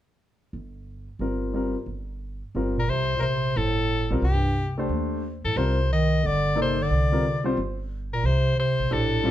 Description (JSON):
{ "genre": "modal jazz", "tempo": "179 BPM", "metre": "4/4", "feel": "swing 64% on 8ths", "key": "C dorian", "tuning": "A4 = 442 Hz", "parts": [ { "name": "upright bass", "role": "bass", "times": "0.5-9.3 s", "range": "G1 to G2", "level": "-28 LUFS", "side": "equal", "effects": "none" }, { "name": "clear concert grand piano", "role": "accompaniment", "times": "1.2-9.3 s", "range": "G3 to D5", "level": "-28 LUFS", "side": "left 1 dB", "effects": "none" }, { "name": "bright soprano saxophone", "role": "melody", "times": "2.8-9.3 s", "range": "G4 to Eb5", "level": "-26 LUFS", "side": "left 4 dB", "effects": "none" }, { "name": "dark bass clarinet", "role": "second line", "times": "2.8-9.3 s", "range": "G2 to Eb3", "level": "-26 LUFS", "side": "right 3 dB", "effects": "none" } ], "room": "light reverb", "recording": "none", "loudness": "-22 LUFS", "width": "side -12 dB against mid", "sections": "0.2-2.9 A section; 2.9-9.3 B section", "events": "none", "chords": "0.2 C5; 2.9 Cm9; 8.2 Bbmaj13" }